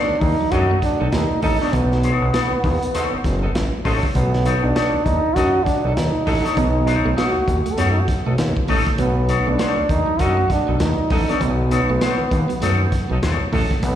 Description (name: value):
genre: funk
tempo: 99 BPM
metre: 4/4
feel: swing 60% on 16ths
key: B mixolydian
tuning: A4 = 444 Hz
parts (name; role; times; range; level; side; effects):
- warm trombone; melody; 0.0-14.0 s; B3 to A4; -21 LUFS; right 1 dB; slapback echo
- electric guitar with an envelope filter; accompaniment; 0.0-13.4 s; D#4 to D#5; -24 LUFS; left 6 dB; slapback echo
- electric guitar at the edge of break-up; riff; 0.0-1.7, 6.6-13.9 s; F#3 to B3; -29 LUFS; right 8 dB; slapback echo
- fat analog bass; bass; 0.1-14.0 s; F#1 to F#2; -20 LUFS; equal; none
- crunchy breakbeat drum kit; drums; 0.2-14.0 s; hi-hat, kick drum, snare drum; -24 LUFS; equal; none
- clear horn section; second line; 0.5-13.7 s; F#3 to A4; -28 LUFS; right 2 dB; slapback echo
room: light reverb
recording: live gig heard through the venue's PA, recital hall reverb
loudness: -16 LUFS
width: side -10 dB against mid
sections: 0.0-14.0 A section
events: none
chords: 0.0 B9